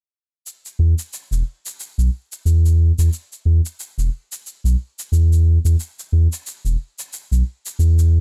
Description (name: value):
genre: organic downtempo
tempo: 90 BPM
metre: 4/4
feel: swing 57% on 16ths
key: unclear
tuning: A4 = 439 Hz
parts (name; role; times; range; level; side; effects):
- shaker; drums; 0.5-8.1 s; none; -35 LUFS; equal; overdrive
- warm sub bass; bass; 0.8-8.2 s; E1 to E2; -16 LUFS; equal; none
room: little or no reverb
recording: dry, gritty hardware recording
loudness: -19 LUFS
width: mono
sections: 0.5-8.2 A section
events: none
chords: none